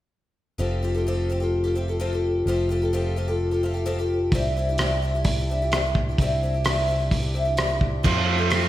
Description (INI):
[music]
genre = folk rock and heartland rock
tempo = 129 BPM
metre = 4/4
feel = straight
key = F major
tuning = A4 = 443 Hz
[part]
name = picked twelve-string acoustic guitar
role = accompaniment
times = 0.6-8.7 s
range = C3 to A4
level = -25 LUFS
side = left 1 dB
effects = none
[part]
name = picked electric bass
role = bass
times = 0.6-8.7 s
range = F1 to F2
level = -25 LUFS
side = equal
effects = none
[part]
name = cloth-damped thuddy drum kit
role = drums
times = 4.3-8.6 s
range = crash cymbal, hi-hat, kick drum, rim click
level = -24 LUFS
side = right 1 dB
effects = none
[part]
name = biting overdriven guitar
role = riff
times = 8.0-8.7 s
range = F3 to F4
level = -24 LUFS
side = right 4 dB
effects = none
[sound]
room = wet recital hall reverb, RT60 1.6 s, small room ambience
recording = big arena sound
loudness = -21 LUFS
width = side -14 dB against mid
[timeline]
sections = 0.6-8.0 A section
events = none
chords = 0.6 Fadd9; 4.3 Cadd9; 8.0 Fadd9